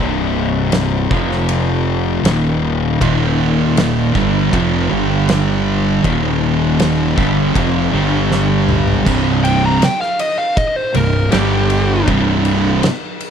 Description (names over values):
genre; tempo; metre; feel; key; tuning
stoner and doom metal; 79 BPM; 4/4; straight; C minor; A4 = 440 Hz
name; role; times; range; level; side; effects
crunchy overdriven guitar; riff; 0.0-12.8 s; C2 to G3; -20 LUFS; right 1 dB; none
thick fuzz guitar; riff; 0.0-12.8 s; C2 to G3; -19 LUFS; left 9 dB; distortion
fuzz fingered electric bass; bass; 0.0-12.8 s; C1 to G1; -20 LUFS; equal; overdrive
oversized low-tuned drum kit; drums; 0.7-13.3 s; crash cymbal, kick drum, ride cymbal, snare drum, toms; -21 LUFS; equal; none
thick fuzz guitar; riff; 3.0-12.8 s; C2 to G3; -18 LUFS; right 10 dB; distortion
fuzz lead guitar; melody; 9.4-12.1 s; G4 to Bb5; -17 LUFS; equal; distortion, slapback echo
room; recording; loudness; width
little or no reverb; dry, close 1970s-style studio recording; -13 LUFS; side -8 dB against mid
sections
0.0-9.1 A section; 9.1-13.3 B section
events
drum fill 8.3-9.1; lead electric guitar solo 9.1-13.3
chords
0.0 C5; 1.1 F5; 2.2 Eb5; 4.9 G5; 6.0 Eb5; 7.9 G5; 9.1 C5; 11.3 G5; 12.1 C5